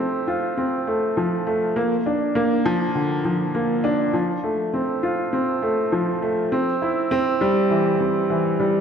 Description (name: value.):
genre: electronica.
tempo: 101 BPM.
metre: 4/4.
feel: straight.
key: F major.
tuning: A4 = 440 Hz.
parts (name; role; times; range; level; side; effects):
warm upright piano; solo; 0.0-8.8 s; D3 to F4; -19 LUFS; equal; none.
room: wet scoring stage reverb, RT60 1.6 s.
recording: nothing above 10.4 kHz.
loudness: -19 LUFS.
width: side -7 dB against mid.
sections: 0.0-8.8 A section.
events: none.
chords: none.